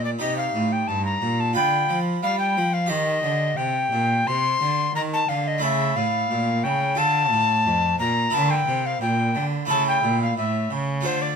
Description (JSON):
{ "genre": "classical, baroque-style sonata movement with continuo", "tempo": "89 BPM", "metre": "4/4", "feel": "rubato", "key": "unclear", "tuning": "A4 = 440 Hz", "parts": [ { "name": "alto recorder", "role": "melody", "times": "0.0-11.4 s", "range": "C5 to C6", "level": "-23 LUFS", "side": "left 3 dB", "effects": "none" }, { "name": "harpsichord", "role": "accompaniment", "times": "0.0-11.4 s", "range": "F2 to C5", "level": "-26 LUFS", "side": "right 1 dB", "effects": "none" }, { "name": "rich cello", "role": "bass", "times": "0.0-11.4 s", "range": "F2 to G3", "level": "-26 LUFS", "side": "right 2 dB", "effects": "none" } ], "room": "moderate studio reverb, RT60 1.0 s", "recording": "minimal, uncompressed stereo recording", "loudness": "-20 LUFS", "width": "side -6 dB against mid", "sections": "0.0-11.4 A section", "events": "none", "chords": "0.2 Cm; 1.6 G7/D; 2.9 Cm; 5.6 A; 7.0 Dm; 8.3 Bbadd9(#11); 9.7 A" }